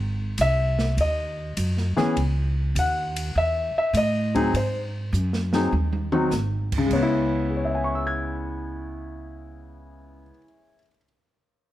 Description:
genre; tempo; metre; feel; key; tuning
jazz piano trio; 101 BPM; 4/4; swing 68% on 8ths; C# minor; A4 = 435 Hz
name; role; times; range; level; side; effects
upright bass; bass; 0.0-10.3 s; G#1 to A2; -26 LUFS; equal; none
warm grand piano; melody; 0.4-11.0 s; C#3 to G#6; -24 LUFS; left 2 dB; none
open jazz drum kit; drums; 0.4-7.1 s; crash cymbal, hi-hat, kick drum, ride cymbal, snare drum, toms; -32 LUFS; right 2 dB; none
room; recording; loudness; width
light reverb; none; -22 LUFS; side -14 dB against mid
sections
0.0-6.9 A section; 6.9-9.3 B section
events
drum fill 5.1-6.3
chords
0.0 G#7; 2.2 C#m; 4.5 G#7; 6.9 C#m7

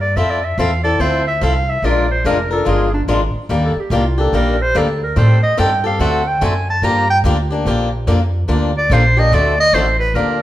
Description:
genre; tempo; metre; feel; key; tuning
acoustic string swing (jazz manouche); 144 BPM; 4/4; swing 63% on 8ths; G minor; A4 = 440 Hz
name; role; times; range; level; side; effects
clear clarinet; melody; 0.0-10.4 s; D4 to Bb5; -17 LUFS; right 1 dB; none
upright bass; bass; 0.0-10.4 s; F1 to A2; -17 LUFS; right 1 dB; none
picked swing-style acoustic guitar; accompaniment; 0.2-10.4 s; D3 to Bb4; -19 LUFS; left 3 dB; none
room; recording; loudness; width
moderate large studio reverb, RT60 1.1 s; band playing live in one room; -13 LUFS; side -14 dB against mid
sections
0.0-10.1 A section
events
clarinet solo 0.0-10.4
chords
0.2 Fmaj7; 1.8 Bb6; 3.5 Ebmaj7; 5.2 Am7b5; 6.0 D7; 6.8 Gm7; 9.3 D7

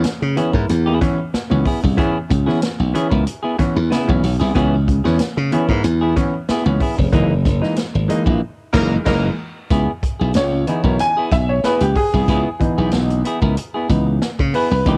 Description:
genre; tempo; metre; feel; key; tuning
funk; 93 BPM; 4/4; straight; C# dorian; A4 = 440 Hz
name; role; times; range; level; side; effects
semi-hollow electric guitar; accompaniment; 0.0-15.0 s; E3 to A#4; -26 LUFS; equal; cassette tape
glassy slap bass; bass; 0.0-15.0 s; E#1 to C#3; -20 LUFS; equal; none
swinging big-band drum kit; drums; 0.0-15.0 s; crash cymbal, hi-hat, kick drum, snare drum; -24 LUFS; equal; cassette tape
warm upright piano; stabs; 0.4-15.0 s; C#3 to G#5; -23 LUFS; equal; cassette tape
clear horn section; second line; 8.7-9.2 s; E3 to A#4; -28 LUFS; equal; cassette tape
room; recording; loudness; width
studio ambience; home recording on cassette; -18 LUFS; mono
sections
0.0-9.7 A section; 9.7-15.0 B section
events
band accent 7.1-9.7; upright piano solo 9.7-15.0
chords
0.0 C#m7; 7.1 F#13; 9.7 C#m7

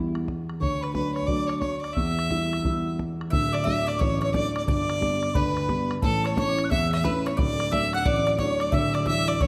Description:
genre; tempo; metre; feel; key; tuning
celtic folk, Celtic hornpipe; 177 BPM; 4/4; swing 64% on 8ths; unclear; A4 = 442 Hz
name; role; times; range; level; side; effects
dark grand piano; accompaniment; 0.0-9.5 s; D1 to E4; -29 LUFS; equal; none
bodhran; percussion; 0.2-9.5 s; none; -32 LUFS; equal; none
clear fiddle; melody; 0.6-9.5 s; A4 to F#5; -30 LUFS; equal; none
mellow hollow wooden whistle; second line; 0.6-9.5 s; A5 to F#6; -36 LUFS; equal; none
mandolin; second line; 3.3-9.5 s; A4 to F#5; -36 LUFS; equal; none
room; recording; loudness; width
wet recital hall reverb, RT60 1.4 s; none; -25 LUFS; mono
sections
0.0-3.3 A section; 3.3-9.5 B section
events
none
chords
0.0 Em; 0.6 D; 2.0 Em; 3.3 D; 4.7 G; 6.0 A; 7.4 D; 8.7 Dadd9

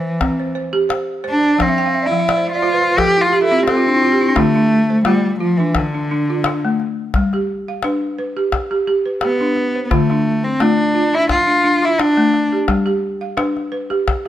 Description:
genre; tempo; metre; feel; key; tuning
west african traditional, West African string and xylophone music; 86 BPM; 4/4; swing 53% on 16ths; unclear; A4 = 442 Hz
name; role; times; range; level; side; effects
warm cello; melody; 0.0-12.5 s; D3 to G4; -16 LUFS; equal; none
balafon; arpeggios; 0.0-14.3 s; D3 to A5; -18 LUFS; equal; none
calabash; percussion; 0.2-14.3 s; none; -22 LUFS; left 3 dB; none
room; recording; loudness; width
light reverb; close, detailed microphones; -14 LUFS; side -12 dB against mid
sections
0.0-4.4 A section; 4.4-14.3 B section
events
cello solo 0.0-4.4; balafon fill 1.6-4.4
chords
0.0 C; 1.6 F; 4.4 Dm; 7.1 G; 9.9 Dm; 12.7 G

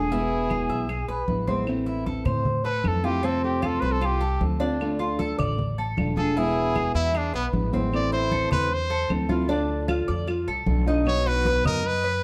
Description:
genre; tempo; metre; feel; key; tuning
latin, Cuban son and guajira; 154 BPM; 4/4; straight; A minor; A4 = 439 Hz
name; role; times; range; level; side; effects
brilliant trumpet; melody; 0.0-12.2 s; B3 to D5; -29 LUFS; equal; none
nylon-string guitar; accompaniment; 0.0-11.9 s; B2 to F#4; -31 LUFS; equal; none
Cuban tres; arpeggios; 0.0-12.2 s; C4 to E5; -32 LUFS; equal; none
upright bass; bass; 0.0-12.2 s; E1 to A2; -31 LUFS; equal; none
congas; percussion; 0.1-12.2 s; none; -33 LUFS; equal; none
claves; percussion; 0.5-11.8 s; none; -45 LUFS; equal; none
room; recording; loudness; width
moderate large studio reverb, RT60 1.2 s; dark, warm production; -25 LUFS; mono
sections
0.0-1.7 A section; 1.7-12.2 B section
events
trumpet solo 1.7-12.2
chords
0.1 E; 1.7 Am; 3.2 F; 4.8 Dm; 6.4 E; 7.9 Am; 9.5 Dm; 11.1 B

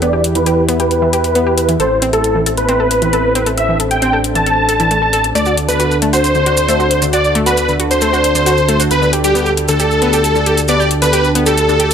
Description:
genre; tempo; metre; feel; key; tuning
uplifting trance; 135 BPM; 4/4; straight; unclear; A4 = 440 Hz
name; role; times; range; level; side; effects
dense compressed supersaw; melody; 0.0-11.9 s; G4 to A5; -14 LUFS; equal; low-pass filter, dub echo
lush unison pad; sustained chords; 0.0-11.9 s; D3 to B4; -19 LUFS; right 1 dB; chorus, vintage 12-bit sampler grit
analog pluck; arpeggios; 0.0-11.9 s; D3 to A4; -19 LUFS; left 1 dB; chorus, dub echo
gritty driven synth bass; bass; 0.0-11.9 s; A1 to E2; -20 LUFS; equal; none
electronic hi-hat; drums; 0.0-11.9 s; none; -21 LUFS; left 4 dB; none
maracas; percussion; 5.4-11.9 s; none; -23 LUFS; right 3 dB; none
room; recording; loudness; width
moderate recital hall reverb, RT60 1.7 s, digital ambience; none; -11 LUFS; side -8 dB against mid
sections
0.0-11.9 A section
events
filter sweep on supersaw synth 0.0-11.9; filter sweep on synth pluck 0.0-11.9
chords
0.0 Em; 1.8 Am; 5.4 D; 8.9 G/D

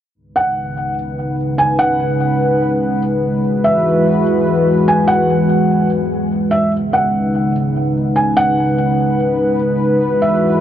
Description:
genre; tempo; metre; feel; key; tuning
hip hop; 146 BPM; 4/4; half-time; B major; A4 = 440 Hz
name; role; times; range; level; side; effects
dark analog pad; sustained chords; 0.5-10.6 s; C#3 to B4; -15 LUFS; equal; chorus
felt-muted upright piano; melody; 0.4-10.6 s; E5 to G#5; -18 LUFS; right 1 dB; low-pass filter, ping-pong delay
room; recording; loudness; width
moderate huge ambient reverb, RT60 5.0 s; dark, warm production; -13 LUFS; side -10 dB against mid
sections
0.1-10.6 A section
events
none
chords
0.1 B69; 3.4 F#9sus4; 6.7 B69; 10.0 F#9sus4

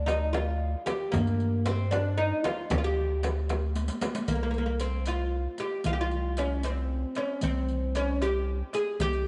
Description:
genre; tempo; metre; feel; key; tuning
Arabic maqam ensemble; 76 BPM (dotted quarters); 6/8; straight; G maqam bayati, C maqam hijaz from 4.3 s; A4 = 438 Hz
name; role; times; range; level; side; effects
oud; melody; 0.0-9.3 s; Bb3 to Ab4; -32 LUFS; equal; none
round analog bass; bass; 0.0-9.3 s; C2 to G2; -32 LUFS; equal; none
darbuka; percussion; 0.1-9.2 s; none; -41 LUFS; equal; none
frame drum; percussion; 0.1-4.1 s; none; -37 LUFS; equal; none
riq; percussion; 0.1-9.2 s; none; -42 LUFS; equal; none
room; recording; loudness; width
moderate echo chamber reverb, RT60 2.1 s; nothing above 10.8 kHz; -29 LUFS; mono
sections
0.0-4.3 A section; 4.3-9.3 B section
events
drum fill 3.8-4.3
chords
none

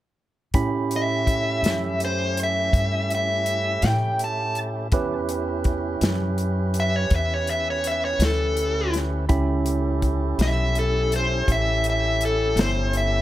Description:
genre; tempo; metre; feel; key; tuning
slow blues; 55 BPM (dotted quarters); 12/8; straight; A mixolydian; A4 = 440 Hz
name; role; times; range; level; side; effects
barky tine electric piano; accompaniment; 0.5-13.2 s; C#4 to B5; -30 LUFS; right 5 dB; phaser, plate reverb
tonewheel organ; sustained chords; 0.5-13.2 s; A3 to B4; -31 LUFS; right 1 dB; overdrive, stopped rotary speaker, plate reverb
upright bass; bass; 0.5-13.2 s; G1 to A2; -25 LUFS; equal; none
natural country drum kit; drums; 0.5-13.1 s; hi-hat, kick drum, snare drum; -25 LUFS; left 1 dB; none
dark smooth lead guitar; melody; 1.0-13.2 s; A4 to A5; -24 LUFS; left 1 dB; overdrive
room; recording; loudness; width
light reverb; none; -20 LUFS; side -14 dB against mid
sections
0.5-13.2 A section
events
lead electric guitar solo 0.5-13.2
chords
0.5 A7

